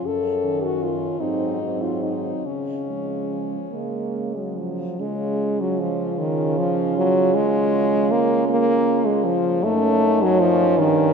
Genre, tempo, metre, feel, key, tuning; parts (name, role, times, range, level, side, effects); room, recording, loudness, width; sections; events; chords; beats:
classical, lyrical piece for horn quartet; 46-53 BPM (dotted quarters); 6/8; rubato; Db major; A4 = 440 Hz
warm French horn; melody; 0.0-11.1 s; Db4 to A4; -28 LUFS; left 5 dB
mellow French horn; second line; 0.0-11.1 s; Gb3 to Db4; -26 LUFS; right 6 dB
mellow French horn; accompaniment; 0.0-11.1 s; Eb3 to Bb3; -21 LUFS; left 1 dB
mellow French horn; bass; 0.0-11.1 s; Gb2 to Db3; -27 LUFS; right 4 dB
wet cathedral reverb, RT60 4.5 s; minimal, uncompressed stereo recording; -19 LUFS; side -6 dB against mid
0.0-5.0 A section; 5.0-11.1 A section
0.1 Ebm7b5/Gb; 1.2 Ab7; 2.5 Db; 9.6 Ebm7b5/Gb
| 0.06 1.21 | 2.46 3.72 | 5.00 6.20 | 7.35 8.49 | 9.64 10.79